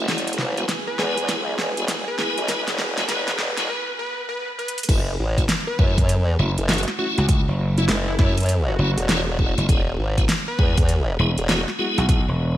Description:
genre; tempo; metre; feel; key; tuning
glitch hop; 100 BPM; 4/4; swing 63% on 16ths; F# minor; A4 = 439 Hz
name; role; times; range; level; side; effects
dark analog pad; sustained chords; 0.0-3.7 s; E4 to G#5; -32 LUFS; right 1 dB; chorus, sidechain pumping
tonewheel organ; stabs; 0.0-12.2 s; G#3 to G#4; -27 LUFS; equal; overdrive, chorus vibrato, fast rotary speaker, sidechain pumping, low-pass filter, digital delay
formant-sweep wobble bass; bass; 0.0-11.6 s; E1 to F#2; -23 LUFS; equal; chorus, tube saturation, high-pass filter
electronic kick drum; drums; 0.1-12.2 s; none; -20 LUFS; equal; high-pass filter on kick, small room ambience
pop drum kit; drums; 0.1-12.2 s; crash cymbal, hi-hat, snare drum; -26 LUFS; equal; small room ambience, gated reverb
plucky unison lead; melody; 0.9-12.0 s; E4 to B4; -30 LUFS; equal; digital delay
gritty slap bass; bass; 6.4-12.6 s; E1 to C#2; -20 LUFS; equal; overdrive
room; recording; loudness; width
light reverb, digital ambience; bright 1980s-style digital production, vinyl crackle, high-pass filter; -19 LUFS; side -13 dB against mid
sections
0.0-4.9 A section; 4.9-12.6 B section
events
build-up 0.0-4.9; drum fill 0.0-3.7, 4.6; break 3.7-4.9; drop 4.9-12.6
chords
0.1 E; 4.9 F#m7; 9.7 E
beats
| 0.09 0.69 1.29 1.89 | 2.49 3.09 3.69 4.29 | 4.89 5.49 6.09 6.69 | 7.29 7.89 8.49 9.09 | 9.69 10.29 10.89 11.49 | 12.09

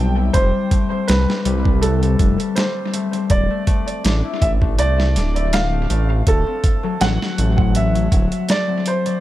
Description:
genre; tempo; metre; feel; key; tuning
trip hop; 81 BPM; 4/4; swing 54% on 16ths; unclear; A4 = 440 Hz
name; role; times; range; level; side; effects
felt-muted upright piano; melody; 0.0-9.2 s; A4 to G5; -23 LUFS; right 2 dB; vintage 12-bit sampler grit, tape echo
concert harp; arpeggios; 0.0-9.2 s; F#3 to E4; -22 LUFS; left 6 dB; tape echo
dark detuned saw bass; bass; 0.0-8.3 s; D1 to C2; -18 LUFS; equal; none
dusty soul sampler-style drum kit; drums; 0.3-9.2 s; hi-hat, kick drum, snare drum; -19 LUFS; right 1 dB; overdrive, studio reverb
room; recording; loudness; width
small room ambience; echo-heavy mix; -15 LUFS; side -14 dB against mid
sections
0.0-9.2 A section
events
none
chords
0.3 Fadd9 (rootless); 3.3 Dsus2; 6.3 D7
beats
| 0.34 1.08 1.82 2.56 | 3.31 4.05 4.79 5.53 | 6.27 7.01 7.75 8.49

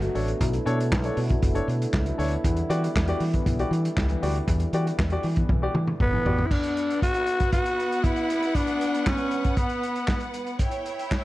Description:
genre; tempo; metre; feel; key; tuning
disco; 118 BPM; 4/4; straight; unclear; A4 = 438 Hz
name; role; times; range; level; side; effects
warm grand piano; accompaniment; 0.0-6.4 s; B2 to D5; -30 LUFS; left 2 dB; none
mellow French horn section; sustained chords; 0.0-6.5 s; D3 to F#4; -32 LUFS; right 1 dB; none
fingered electric bass; bass; 0.0-6.4 s; F#1 to E3; -26 LUFS; equal; none
vintage drum kit; drums; 0.0-11.2 s; crash cymbal, handclaps, hi-hat, kick drum, snare drum, toms; -26 LUFS; equal; none
growling alto saxophone; melody; 6.0-10.3 s; B3 to F#4; -25 LUFS; equal; slapback echo
clear studio string section; second line; 6.5-11.2 s; B3 to G5; -31 LUFS; equal; none
room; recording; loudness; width
light reverb, small room ambience; dark, warm production; -22 LUFS; side -17 dB against mid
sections
0.0-6.5 A section; 6.5-11.2 B section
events
drum fill 5.5-6.5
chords
0.0 Bm7; 2.4 Em7; 6.5 N.C.; 10.6 Em6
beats
| 0.41 0.92 1.43 1.94 | 2.44 2.95 3.46 3.97 | 4.48 4.99 5.49 6.00 | 6.51 7.02 7.53 8.04 | 8.55 9.06 9.57 10.09 | 10.60 11.11

